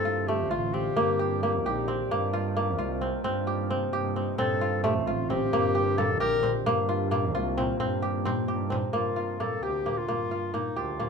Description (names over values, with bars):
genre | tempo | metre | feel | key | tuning
contemporary instrumental, chamber music in an uneven meter | 263 BPM (eighths) | 5/8 | straight | G minor | A4 = 440 Hz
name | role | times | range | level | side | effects
warm clarinet | melody | 0.0-2.0, 4.4-6.5, 9.0-11.1 s | Eb4 to Bb4 | -30 LUFS | left 3 dB | none
glassy FM pad | sustained chords | 0.0-8.9 s | C3 to D5 | -35 LUFS | left 2 dB | ensemble chorus, built-in reverb
kora | arpeggios | 0.0-11.1 s | A3 to G4 | -28 LUFS | equal | none
warm double bass | bass | 0.0-11.0 s | A1 to G2 | -32 LUFS | right 5 dB | none
frame drum | percussion | 4.4-11.1 s | none | -36 LUFS | left 1 dB | none
room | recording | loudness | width
wet studio reverb, RT60 0.7 s | minimal, uncompressed stereo recording | -25 LUFS | side -5 dB against mid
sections
0.0-8.9 A section; 8.9-11.1 B section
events
none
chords
0.0 Dm7/G; 1.0 Ebmaj7/G; 2.1 F7sus4/G; 3.2 Cm7/G; 4.4 Dm7/G; 5.5 Ebmaj7/G; 6.7 F7sus4/G; 7.8 Cm7/G; 8.9 Gm7